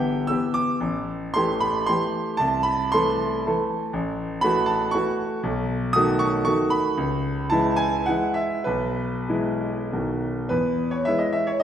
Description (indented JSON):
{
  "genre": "classical, romantic triple-time dance for piano with dotted rhythms",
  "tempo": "93-126 BPM",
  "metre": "3/4",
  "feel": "rubato",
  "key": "E major from 3.9 s",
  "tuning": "A4 = 441 Hz",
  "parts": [
    { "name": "clear concert grand piano", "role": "solo", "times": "0.0-11.6 s", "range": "G1 to E6", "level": "-21 LUFS", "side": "equal", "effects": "none" }
  ],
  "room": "wet recital hall reverb, RT60 1.7 s",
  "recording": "heard from further back in the room",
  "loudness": "-21 LUFS",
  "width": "side -9 dB against mid",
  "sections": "0.0-10.5 A section; 10.5-11.6 B section",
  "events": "none",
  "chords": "0.0 Em/G; 0.8 Am7; 2.4 Am/C; 3.9 F#m7/A; 5.4 B7; 7.0 C#m7; 8.7 E/B; 9.9 B; 10.5 E"
}